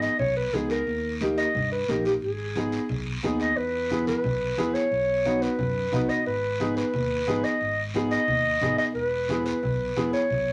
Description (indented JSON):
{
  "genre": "latin, cumbia",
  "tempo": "178 BPM",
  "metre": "4/4",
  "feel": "straight",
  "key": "G# minor",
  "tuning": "A4 = 440 Hz",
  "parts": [
    { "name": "dark clarinet", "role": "melody", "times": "0.0-10.5 s", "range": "G4 to D#5", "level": "-28 LUFS", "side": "equal", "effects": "none" },
    { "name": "clear upright piano", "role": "accompaniment", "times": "0.0-10.2 s", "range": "A#3 to G#4", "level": "-30 LUFS", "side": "equal", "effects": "none" },
    { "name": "fingered electric bass", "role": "bass", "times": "0.0-10.5 s", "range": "E1 to G2", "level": "-36 LUFS", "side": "equal", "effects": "none" },
    { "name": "guiro", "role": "percussion", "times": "0.0-10.5 s", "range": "none", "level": "-42 LUFS", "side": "equal", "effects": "none" },
    { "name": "congas", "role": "percussion", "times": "0.2-10.5 s", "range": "none", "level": "-36 LUFS", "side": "equal", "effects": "none" }
  ],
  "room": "wet small room reverb, RT60 0.6 s",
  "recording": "none",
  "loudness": "-26 LUFS",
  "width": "mono",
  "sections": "0.0-3.6 A section; 3.6-10.5 B section",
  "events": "none",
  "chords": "0.0 G#m; 0.9 D#; 2.2 G#m; 3.6 E; 4.9 B; 6.3 G#m; 9.0 E"
}